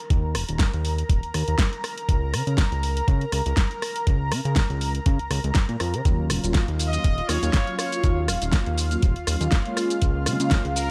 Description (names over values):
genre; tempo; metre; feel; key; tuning
nu-disco, nu disco; 121 BPM; 4/4; swing 55% on 16ths; Eb minor; A4 = 440 Hz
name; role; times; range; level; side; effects
lush unison pad; sustained chords; 0.0-10.9 s; F4 to Bb5; -34 LUFS; equal; chorus, sidechain pumping
fat analog bass; bass; 0.1-10.9 s; Eb1 to Db3; -28 LUFS; equal; none
electronic kick drum; drums; 0.1-10.6 s; none; -23 LUFS; equal; none
pop drum kit; drums; 0.1-10.9 s; hi-hat, rim click, shaker, snare drum; -30 LUFS; equal; none
mellow synth brass; accompaniment; 6.0-10.6 s; Gb3 to F4; -32 LUFS; equal; chorus, sidechain pumping, dub echo
congas; percussion; 6.3-10.4 s; none; -37 LUFS; equal; none
clear trumpet section; melody; 6.9-10.9 s; Bb4 to Eb5; -33 LUFS; equal; dub echo
room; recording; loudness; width
little or no reverb; none; -23 LUFS; mono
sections
0.0-10.9 A section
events
none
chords
0.0 Eb5; 1.8 Bbm/Db; 6.1 Ebm7; 9.8 Bbm7/Db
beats
| 0.10 0.60 1.09 1.59 | 2.09 2.58 3.08 3.58 | 4.07 4.57 5.06 5.56 | 6.05 6.55 7.05 7.54 | 8.04 8.53 9.03 9.53 | 10.02 10.52